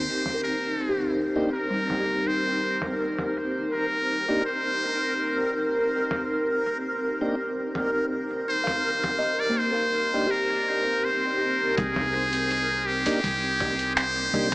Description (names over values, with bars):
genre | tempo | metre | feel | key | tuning
ambient dub | 82 BPM | 4/4 | straight | C minor | A4 = 438 Hz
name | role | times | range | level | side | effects
trumpet with metal mute | melody | 0.0-14.5 s | G4 to D5 | -26 LUFS | equal | dub echo
granular cloud pad | sustained chords | 0.0-14.5 s | C4 to D6 | -30 LUFS | equal | built-in reverb
upright bass | bass | 0.0, 11.8-14.5 s | C2 | -32 LUFS | equal | none
backwards swelling texture | texture | 1.2-11.8 s | Bb4 | -31 LUFS | equal | built-in reverb
kalimba | arpeggios | 0.3-13.0 s | G3 to F5 | -32 LUFS | left 1 dB | low-pass filter, dub echo
lo-fi sampler-style drum kit | drums | 0.3-14.5 s | finger snaps, hi-hat, toms | -32 LUFS | equal | overdrive, low-pass filter on toms, low-pass filter on hats, low-pass filter on snare, low-pass filter on room, dub echo
mellow tonewheel organ | stabs | 1.4-14.5 s | Bb3 to G4 | -32 LUFS | equal | slow rotary speaker, dub echo
electronic kick drum | drums | 11.8-13.8 s | none | -35 LUFS | equal | overdrive
room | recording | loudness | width
moderate huge ambient reverb, RT60 6.0 s | small speaker sound | -23 LUFS | side -22 dB against mid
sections
0.1-11.8 A section; 11.8-14.5 B section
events
filter sweep on kalimba 0.1-11.8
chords
0.1 Cm7